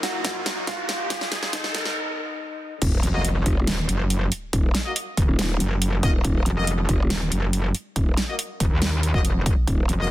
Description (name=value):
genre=heavy wobble dubstep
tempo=140 BPM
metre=4/4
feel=half-time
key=Eb minor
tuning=A4 = 438 Hz
part: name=mellow electric guitar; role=melody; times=0.0-2.7 s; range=Eb4 to Gb4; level=-32 LUFS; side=equal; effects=spring reverb, digital delay
part: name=supersaw pad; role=sustained chords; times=0.0-2.0 s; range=Ab2 to Eb4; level=-35 LUFS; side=right 2 dB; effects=sidechain pumping
part: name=dubstep drum kit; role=drums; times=0.0-10.0 s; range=crash cymbal, hi-hat, snare drum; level=-28 LUFS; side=right 1 dB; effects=none
part: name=riser and sub drop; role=sound effects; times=0.0-4.5 s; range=none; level=-31 LUFS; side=equal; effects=none
part: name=electronic kick drum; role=drums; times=0.2-9.8 s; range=none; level=-23 LUFS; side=equal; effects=none
part: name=growl bass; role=bass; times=2.8-9.9 s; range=Eb1 to F1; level=-24 LUFS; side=equal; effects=chorus, overdrive
part: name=metallic wobble bass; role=bass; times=3.0-10.1 s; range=Eb1 to Eb2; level=-22 LUFS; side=equal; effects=distortion, chorus, overdrive
part: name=bright brass ensemble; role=stabs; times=3.1-10.1 s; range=Bb3 to Eb5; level=-31 LUFS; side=left 3 dB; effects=digital delay
room=digital ambience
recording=dense, heavily limited modern master, high-pass filter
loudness=-21 LUFS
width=side -15 dB against mid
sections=0.0-2.8 A section; 2.8-10.1 B section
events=build-up 0.0-2.8; drum fill 0.0-2.0; riser 0.0-2.0; break 2.0-2.8; drop 2.8-10.1; impact 2.8-4.5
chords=0.0 Ebm/Bb; 1.1 Abm; 2.8 Ebm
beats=0.25 0.68 | 1.10 1.53 1.96 2.39 | 2.82 3.25 3.67 4.10 | 4.53 4.96 5.39 5.82 | 6.25 6.67 7.10 7.53 | 7.96 8.39 8.82 9.25 | 9.68 10.10